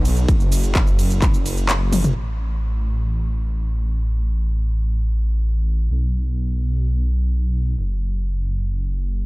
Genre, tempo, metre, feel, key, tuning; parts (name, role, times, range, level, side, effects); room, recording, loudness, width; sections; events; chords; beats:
EDM, festival progressive house; 128 BPM; 4/4; straight; A4 = 440 Hz
wide detuned saw bass; bass; 0.0-9.3 s; F#1 to B1; -20 LUFS; equal; chorus, sidechain pumping
big-room dance drum kit; drums; 0.1-2.3 s; crash cymbal, handclaps, hi-hat, ride cymbal, shaker, toms; -24 LUFS; left 1 dB; low-pass filter on snare, studio reverb, low-pass filter on hats, low-pass filter on cymbals, low-pass filter on perc, low-pass filter on toms
electronic kick drum; drums; 0.3-1.3 s; -17 LUFS; equal; studio reverb
little or no reverb; dark, warm production; -18 LUFS; side -22 dB against mid
0.0-2.2 A section; 2.2-9.3 B section
drop 0.0-2.2; kick drops out 1.7-2.2; drum fill 1.9
| 0.28 0.75 1.22 1.69 | 2.16 2.63 3.10 3.57 | 4.04 4.50 4.97 5.44 | 5.91 6.38 6.85 7.32 | 7.79 8.25 8.72 9.19